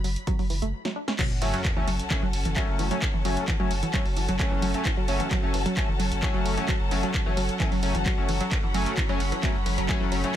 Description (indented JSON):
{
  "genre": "driving peak-time techno",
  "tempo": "131 BPM",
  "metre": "4/4",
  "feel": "straight",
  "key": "F# minor",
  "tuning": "A4 = 441 Hz",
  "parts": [
    { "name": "wide unison pluck", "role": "riff", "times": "0.0-10.2 s", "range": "E3 to D4", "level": "-32 LUFS", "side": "right 1 dB", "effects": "tube saturation, sidechain pumping, ping-pong delay" },
    { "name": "saturated sub bass", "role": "bass", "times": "0.0-10.2 s", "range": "F#1", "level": "-30 LUFS", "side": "equal", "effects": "sidechain pumping, low-pass filter" },
    { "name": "punchy analog drum machine", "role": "drums", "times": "0.0-10.3 s", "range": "crash cymbal, handclaps, hi-hat, ride cymbal, snare drum", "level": "-32 LUFS", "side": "equal", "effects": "sidechain pumping on hats, sidechain pumping on cymbals" },
    { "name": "rich symphonic string section", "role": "texture", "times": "0.0-10.4 s", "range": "C#4 to B5", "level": "-34 LUFS", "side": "left 3 dB", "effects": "sidechain pumping" },
    { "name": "electronic kick drum", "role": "drums", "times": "0.3-10.0 s", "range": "none", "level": "-28 LUFS", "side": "equal", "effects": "none" },
    { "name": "analog drone", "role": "drone", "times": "2.1-10.4 s", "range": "F#3", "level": "-36 LUFS", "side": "right 1 dB", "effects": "chorus, sidechain pumping" },
    { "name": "sub drop", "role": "sound effects", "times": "1.2-3.0 s", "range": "none", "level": "-37 LUFS", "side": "equal", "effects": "none" },
    { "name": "sync-sweep polysynth", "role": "stabs", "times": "1.4-10.4 s", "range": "F#3 to C#4", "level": "-31 LUFS", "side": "left 1 dB", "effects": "chorus, sidechain pumping, ping-pong delay" }
  ],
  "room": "little or no reverb",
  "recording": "none",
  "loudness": "-23 LUFS",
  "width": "side -11 dB against mid",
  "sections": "0.0-1.2 A section; 1.2-10.4 B section",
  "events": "break 0.7-1.2; drum fill 0.8-1.2; drop 1.2-10.4; impact 1.2-3.0",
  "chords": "0.0 N.C.; 1.2 F#m"
}